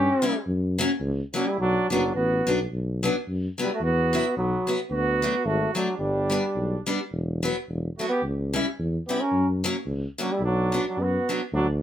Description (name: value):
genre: alpine folk, alpine dance band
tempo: 108 BPM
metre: 2/4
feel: swing 55% on 8ths, rubato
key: B minor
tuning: A4 = 440 Hz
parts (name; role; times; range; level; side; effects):
- clear euphonium; melody; 0.0-11.7 s; F#3 to C#4; -25 LUFS; equal; none
- mellow trumpet; second line; 0.0-11.7 s; B3 to A#4; -31 LUFS; right 7 dB; none
- mellow tuba; bass; 0.0-11.8 s; E1 to F#2; -27 LUFS; equal; none
- picked steel-string acoustic guitar; accompaniment; 0.2-11.4 s; F#3 to E4; -26 LUFS; left 2 dB; none
room: light reverb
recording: none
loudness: -23 LUFS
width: side -10 dB against mid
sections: 0.0-2.7 A section; 2.7-11.5 A section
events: none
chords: 0.5 F#; 1.6 Bm; 3.8 Esus2; 4.9 D; 6.0 G; 7.1 Esus2; 8.2 C#dim; 9.3 F#; 10.4 Bm